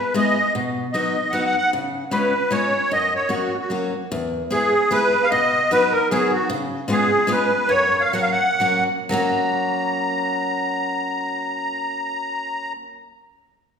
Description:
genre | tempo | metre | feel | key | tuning
musette waltz | 117-155 BPM | 3/4 | swing 54% on 8ths, rubato | F# major | A4 = 440 Hz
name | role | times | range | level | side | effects
musette accordion | melody | 0.0-12.7 s | F#4 to A#5 | -20 LUFS | equal | none
picked steel-string acoustic guitar | accompaniment | 0.1-12.8 s | E2 to G#4 | -24 LUFS | left 1 dB | none
room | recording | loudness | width
wet recital hall reverb, RT60 1.5 s | heard from further back in the room | -18 LUFS | side -6 dB against mid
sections
0.0-4.1 A section; 4.1-9.1 B section; 9.1-12.1 C section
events
slowing down 6.5-9.1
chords
0.0 E; 0.5 B; 1.7 C#7; 2.9 F#; 4.1 E; 5.3 B; 6.5 C#7; 7.7 F#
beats
0.15 | 0.55 0.94 1.33 | 1.73 2.12 2.51 | 2.91 3.30 3.71 | 4.12 4.52 4.92 | 5.31 5.71 6.10 | 6.49 6.88 7.28 | 7.69 8.12 8.59 | 9.10 9.60 10.11 | 10.61 11.11 11.61

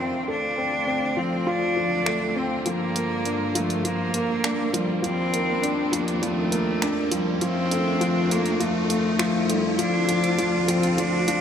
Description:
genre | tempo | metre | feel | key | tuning
piano and strings electronica | 101 BPM | 4/4 | straight | unclear | A4 = 440 Hz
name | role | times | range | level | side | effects
bright cello | melody | 0.0-11.4 s | G3 to D4 | -26 LUFS | right 1 dB | none
rich studio string section | sustained chords | 0.0-11.4 s | D2 to F4 | -31 LUFS | equal | low-pass filter
felt-muted upright piano | riff | 0.0-11.4 s | F3 to A4 | -24 LUFS | left 1 dB | none
riser | sound effects | 0.0-11.4 s | none | -33 LUFS | right 1 dB | none
deep house drum kit | drums | 2.1-11.4 s | finger snaps, hi-hat | -29 LUFS | right 1 dB | overdrive
room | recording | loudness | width
wet lush hall reverb, RT60 2.0 s | none | -21 LUFS | side -8 dB against mid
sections
0.0-11.4 A section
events
build-up 0.0-11.4; riser 0.0-11.4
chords
0.3 Dm7; 2.7 Gm7; 5.0 Ebmaj7; 7.4 F7; 9.8 Dm7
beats
| 0.29 0.88 1.47 2.07 | 2.66 3.26 3.85 4.44 | 5.04 5.63 6.23 6.82 | 7.41 8.01 8.60 9.20 | 9.79 10.38 10.98

